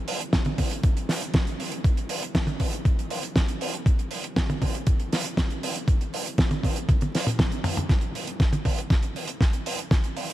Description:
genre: italo disco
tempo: 119 BPM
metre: 4/4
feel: straight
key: none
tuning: none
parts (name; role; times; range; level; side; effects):
- damped 70s drum kit; drums; 0.1-10.3 s; hi-hat, snare drum, toms; -26 LUFS; right 1 dB; none
- electronic kick drum; drums; 0.3-10.0 s; none; -23 LUFS; equal; overdrive
room: moderate cathedral reverb, RT60 6.0 s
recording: dreamy mix soaked in reverb, vinyl crackle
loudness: -23 LUFS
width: side -15 dB against mid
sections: 0.0-7.9 A section; 7.9-10.3 B section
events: drum fill 6.9-7.9, 7.9-10.3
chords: none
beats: 0.33 0.84 1.34 | 1.85 2.35 2.85 3.36 | 3.86 4.37 4.87 5.38 | 5.88 6.38 6.89 7.39 | 7.90 8.40 8.90 9.41 | 9.91

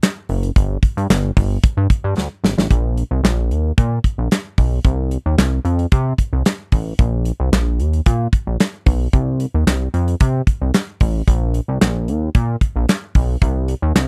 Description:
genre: early-eighties boogie funk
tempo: 112 BPM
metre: 4/4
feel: straight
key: unclear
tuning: A4 = 440 Hz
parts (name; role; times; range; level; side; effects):
- modern studio drum kit; drums; 0.0-14.1 s; handclaps, hi-hat, kick drum, snare drum; -17 LUFS; equal; none
- chorused synth bass; bass; 0.3-14.1 s; F#1 to C3; -20 LUFS; equal; none
room: little or no reverb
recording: dry, close 1970s-style studio recording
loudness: -18 LUFS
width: mono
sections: 0.0-2.7 A section; 2.7-14.1 B section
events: drum fill 2.2-2.7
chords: none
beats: 0.03 | 0.56 1.10 1.63 2.17 | 2.71 3.24 3.78 4.31 | 4.85 5.38 5.92 6.46 | 6.99 7.53 8.06 8.60 | 9.13 9.67 10.21 10.74 | 11.28 11.81 12.35 12.88 | 13.42 13.96

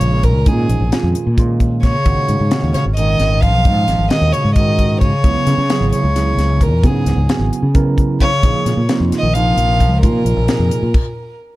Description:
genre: electric jazz fusion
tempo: 263 BPM (eighths)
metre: 7/8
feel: straight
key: Bb phrygian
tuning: A4 = 441 Hz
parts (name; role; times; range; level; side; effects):
- warm violin; melody; 0.0-11.4 s; Ab4 to F5; -20 LUFS; right 1 dB; none
- warm bass clarinet; second line; 0.0-11.4 s; Ab2 to F3; -21 LUFS; left 2 dB; none
- overdriven tine electric piano; accompaniment; 0.0-10.8 s; Bb2 to Bb4; -21 LUFS; right 4 dB; phaser
- fretless electric bass; bass; 0.0-10.9 s; Ab1 to Db3; -16 LUFS; equal; none
- tight funk drum kit; drums; 0.0-11.1 s; crash cymbal, hi-hat, kick drum, snare drum; -16 LUFS; equal; none
room: studio ambience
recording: dark, warm production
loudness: -12 LUFS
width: side -17 dB against mid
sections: 0.0-11.6 A section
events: stop 10.9-11.6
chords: 0.0 Bbm7; 2.1 Ab9sus4; 5.2 Dbm7; 8.4 Bbm11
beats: 0.01 0.24 | 0.47 0.69 0.92 1.15 1.37 1.60 1.83 | 2.06 2.28 2.51 2.74 2.97 3.19 3.42 | 3.65 3.88 4.10 4.33 4.56 4.79 5.01 | 5.24 5.47 5.70 5.93 6.15 6.38 6.61 | 6.84 7.07 7.29 7.52 7.75 7.98 8.21 | 8.43 8.66 8.89 9.12 9.35 9.57 9.80 | 10.03 10.26 10.49 10.71 10.94 11.17

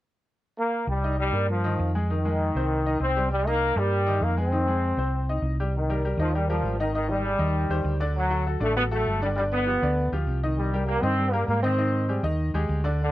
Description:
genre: latin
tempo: 198 BPM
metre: 4/4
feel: straight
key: C minor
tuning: A4 = 441 Hz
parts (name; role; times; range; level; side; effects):
- bright trombone section; melody; 0.6-13.1 s; D3 to C4; -26 LUFS; equal; none
- hollow-body short-scale fingered electric bass; bass; 0.9-13.1 s; G1 to Ab2; -26 LUFS; equal; none
- bright baby grand piano; accompaniment; 1.0-13.1 s; D3 to Eb5; -30 LUFS; left 1 dB; none
room: light reverb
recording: dry, close 1970s-style studio recording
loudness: -23 LUFS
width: side -15 dB against mid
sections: 0.9-5.7 A section; 5.7-13.1 B section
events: none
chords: 0.0 N.C.; 0.9 Cm7; 2.1 Fm7; 3.3 Cm7; 4.5 Fm7; 5.7 Cm7; 6.9 Abmaj7; 8.2 D; 9.4 G7; 10.6 Cm7; 11.8 Abmaj7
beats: 0.27 0.58 | 0.88 1.18 1.49 1.79 | 2.09 2.40 2.70 3.00 | 3.31 3.61 3.91 4.22 | 4.52 4.82 5.13 5.43 | 5.73 6.04 6.34 6.64 | 6.95 7.25 7.55 7.85 | 8.16 8.46 8.76 9.06 | 9.37 9.67 9.97 10.28 | 10.58 10.88 11.18 11.49 | 11.79 12.09 12.39 12.70 | 13.00

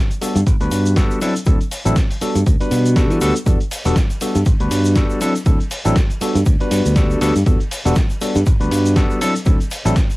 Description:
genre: filtered disco house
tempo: 120 BPM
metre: 4/4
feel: swing 56% on 16ths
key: G major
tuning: A4 = 440 Hz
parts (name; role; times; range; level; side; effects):
- dusty soul sampler-style drum kit; drums; 0.1-10.2 s; cabasa, hi-hat, ride cymbal, snare drum; -25 LUFS; equal; none
- egg shaker; percussion; 0.1-10.2 s; none; -34 LUFS; left 4 dB; sidechain pumping on perc
- barky tine electric piano; accompaniment; 0.2-9.9 s; F#3 to B4; -20 LUFS; equal; overdrive, phaser, sidechain pumping, cassette tape
- modern bright fingered electric bass; bass; 0.4-9.9 s; E1 to E3; -17 LUFS; equal; sidechain pumping
- electronic kick drum; drums; 0.5-10.1 s; none; -16 LUFS; equal; none
room: light reverb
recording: home recording on cassette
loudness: -14 LUFS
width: side -20 dB against mid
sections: 0.0-10.2 A section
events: none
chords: 0.2 Gmaj9; 1.2 D9; 2.2 Gmaj9; 3.5 Em11; 4.2 Gmaj9; 5.2 D9; 6.2 Gmaj9; 7.5 Em11; 8.2 Gmaj9; 9.2 D9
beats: 0.46 0.96 | 1.46 1.96 2.46 2.96 | 3.46 3.96 4.46 4.96 | 5.46 5.96 6.46 6.96 | 7.46 7.96 8.46 8.96 | 9.46 9.96

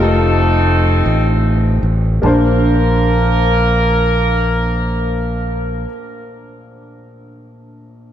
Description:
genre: slow gospel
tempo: 48-58 BPM (dotted quarters)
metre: 6/8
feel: straight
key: Bb major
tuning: A4 = 439 Hz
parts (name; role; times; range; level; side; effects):
- clear horn section; melody; 0.0-5.9 s; A3 to Bb4; -18 LUFS; equal; ping-pong delay
- warm upright piano; accompaniment; 0.0-8.1 s; Bb1 to A5; -20 LUFS; left 1 dB; none
- modern bright fingered electric bass; bass; 0.0-5.8 s; F1 to Bb1; -15 LUFS; equal; none
room: moderate lush hall reverb, RT60 2.0 s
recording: dreamy mix soaked in reverb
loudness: -12 LUFS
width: side -10 dB against mid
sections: 0.0-2.2 A section; 2.2-7.2 B section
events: slowing down 0.0-2.2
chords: 0.0 F9; 2.2 Bbmaj9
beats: 1.05 | 2.23 3.46 | 4.70 5.94

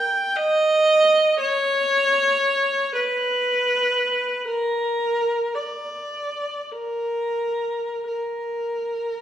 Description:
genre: classical, free, expressive piece for unaccompanied viola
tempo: 41-61 BPM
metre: 3/4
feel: rubato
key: unclear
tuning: A4 = 442 Hz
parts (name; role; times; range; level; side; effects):
- rich viola; solo; 0.0-9.2 s; A#4 to G5; -20 LUFS; equal; none
room: wet recital hall reverb, RT60 1.4 s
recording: heard from further back in the room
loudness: -20 LUFS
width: side -10 dB against mid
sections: 0.0-9.2 A section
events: none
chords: none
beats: 0.35 | 1.38 2.41 3.43 | 4.45 5.53 6.71 | 8.07

